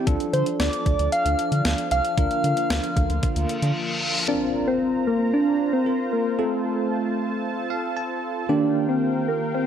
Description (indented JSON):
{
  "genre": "synth-pop",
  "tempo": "114 BPM",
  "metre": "4/4",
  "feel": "straight",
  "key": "unclear",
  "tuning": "A4 = 435 Hz",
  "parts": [
    { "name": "bell-like tine electric piano", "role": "accompaniment", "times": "0.0-9.7 s", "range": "Eb3 to A5", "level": "-28 LUFS", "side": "right 2 dB", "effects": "medium stereo tremolo" },
    { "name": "sweeping resonant pad", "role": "sustained chords", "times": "0.0-9.7 s", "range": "D3 to Bb5", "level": "-30 LUFS", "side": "right 1 dB", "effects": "chorus" },
    { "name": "round analog bass", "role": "bass", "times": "0.1-3.7 s", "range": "C2 to D3", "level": "-24 LUFS", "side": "equal", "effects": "none" },
    { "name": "clean 12-bit digital drum machine", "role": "drums", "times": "0.1-3.7 s", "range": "hi-hat, kick drum, snare drum", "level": "-26 LUFS", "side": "equal", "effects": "none" },
    { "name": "soft struck synth lead", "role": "melody", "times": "0.3-9.7 s", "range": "A3 to F5", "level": "-23 LUFS", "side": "equal", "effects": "chorus, slapback echo" },
    { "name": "reverse cymbal and impact", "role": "sound effects", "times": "3.5-6.4 s", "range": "none", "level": "-28 LUFS", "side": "left 2 dB", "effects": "none" }
  ],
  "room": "light reverb, digital ambience",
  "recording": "none",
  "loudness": "-21 LUFS",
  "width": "side -8 dB against mid",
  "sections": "0.0-4.3 A section; 4.3-9.7 B section",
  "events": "reverse cymbal 3.5-4.3; impact 4.3-6.4; tine electric piano fill 7.4-8.5",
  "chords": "0.1 Dm; 2.2 Bb/D; 4.3 Bbsus2; 6.4 F; 8.5 Ebadd9"
}